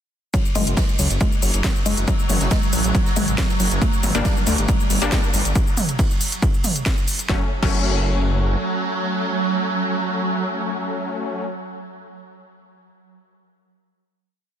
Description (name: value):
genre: driving peak-time techno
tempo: 138 BPM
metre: 4/4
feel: straight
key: F# minor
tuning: A4 = 443 Hz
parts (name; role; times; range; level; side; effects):
- woody wave-folded pluck; riff; 0.3-7.7 s; F#3 to A3; -27 LUFS; left 2 dB; chorus, tube saturation, sidechain pumping, dub echo
- swarming drone; drone; 1.4-11.1 s; F#3; -26 LUFS; right 4 dB; built-in reverb, sidechain pumping
- electronic kick drum; drums; 0.3-7.8 s; none; -20 LUFS; equal; none
- oversized low-tuned drum kit; drums; 0.3-5.5 s; ride cymbal, snare drum; -34 LUFS; left 2 dB; high-pass filter on cymbals, high-pass filter on snare, high-pass filter on room
- techno drum kit; drums; 0.3-7.8 s; crash cymbal, hi-hat, ride cymbal, shaker, snare drum, toms; -25 LUFS; right 1 dB; sidechain pumping on hats, sidechain pumping on cymbals, sidechain pumping on perc, sidechain pumping on toms
- detuned saw bass; bass; 0.6-8.6 s; F#1 to D2; -22 LUFS; equal; sidechain pumping
- supersaw stab; stabs; 4.1-11.4 s; F#3 to D4; -26 LUFS; left 3 dB; sidechain pumping, dub echo
room: light reverb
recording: dense, heavily limited modern master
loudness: -18 LUFS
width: side -10 dB against mid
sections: 0.3-7.3 drop; 7.3-10.8 final chord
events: drop 0.3-7.3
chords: 0.3 N.C.; 3.8 G5; 7.3 F#m